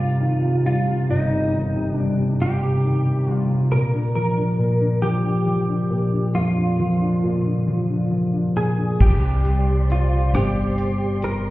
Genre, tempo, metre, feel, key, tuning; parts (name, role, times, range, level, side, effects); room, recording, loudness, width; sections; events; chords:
six-eight pop ballad; 45 BPM (dotted quarters); 6/8; straight; A4 = 443 Hz
direct-recorded clean electric guitar; melody; 0.0-11.5 s; Eb4 to Bb4; -26 LUFS; right 1 dB; ensemble chorus, tape echo
warm upright piano; accompaniment; 0.0-11.5 s; G1 to D4; -20 LUFS; equal
dark studio string section; sustained chords; 9.0-11.5 s; G4 to C6; -32 LUFS; equal
upright bass; bass; 9.0-11.5 s; G1 to C2; -20 LUFS; equal
damped 70s drum kit; drums; 9.0-11.4 s; crash cymbal, hi-hat, kick drum, rim click; -18 LUFS; equal
light reverb, studio reverb; heard muffled through a wall, stone room reverb, EQ; -18 LUFS; side -17 dB against mid
0.0-9.0 A section; 9.0-11.5 B section
0.0 Cm; 3.7 Bb; 9.0 Csus2